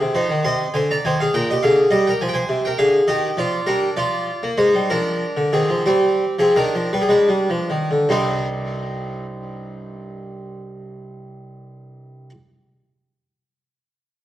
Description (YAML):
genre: classical, baroque-style suite movement for harpsichord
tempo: 49-69 BPM (dotted quarters)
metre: 6/8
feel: rubato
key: C minor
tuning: A4 = 435 Hz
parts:
  - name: harpsichord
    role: solo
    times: 0.0-12.3 s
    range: C2 to C6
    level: -18 LUFS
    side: equal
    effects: none
room: wet recital hall reverb, RT60 1.4 s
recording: worn, warbling old tape, cassette tape, warbly pitch drift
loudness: -17 LUFS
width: side -13 dB against mid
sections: 0.0-8.1 A section; 8.1-12.7 B section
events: slowing down 3.1-8.1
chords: 0.4 Ab/C; 1.3 Gm/Bb; 2.2 Fm; 3.1 Eb; 4.0 Fm; 4.9 Bb9; 5.9 Cm/G; 6.9 G7; 8.1 Cm